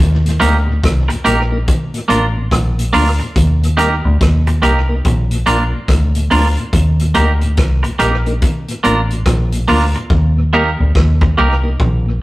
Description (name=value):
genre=roots reggae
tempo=71 BPM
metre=4/4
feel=swing 62% on 16ths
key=unclear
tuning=A4 = 440 Hz
part: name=deep dub fingered electric bass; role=bass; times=0.0-12.2 s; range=A1 to Eb2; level=-14 LUFS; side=equal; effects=none
part: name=mellow tonewheel organ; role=accompaniment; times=0.2-12.1 s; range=Eb2 to Eb4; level=-24 LUFS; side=left 2 dB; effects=slow rotary speaker
part: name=vintage drum kit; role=drums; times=0.3-12.0 s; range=hi-hat, kick drum, rim click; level=-17 LUFS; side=equal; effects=tape echo
part: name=clean electric guitar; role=accompaniment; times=0.4-11.5 s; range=Bb3 to Bb4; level=-16 LUFS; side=right 2 dB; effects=none
room=moderate stone room reverb, RT60 1.4 s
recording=rough rehearsal-room recording, tube saturation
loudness=-12 LUFS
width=side -18 dB against mid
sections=0.0-12.2 A section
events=hi-hats muted 10.1-12.2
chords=0.0 Eb; 1.7 Bb; 3.4 Eb; 5.0 Bb; 6.7 Eb; 8.4 Bb; 10.1 Eb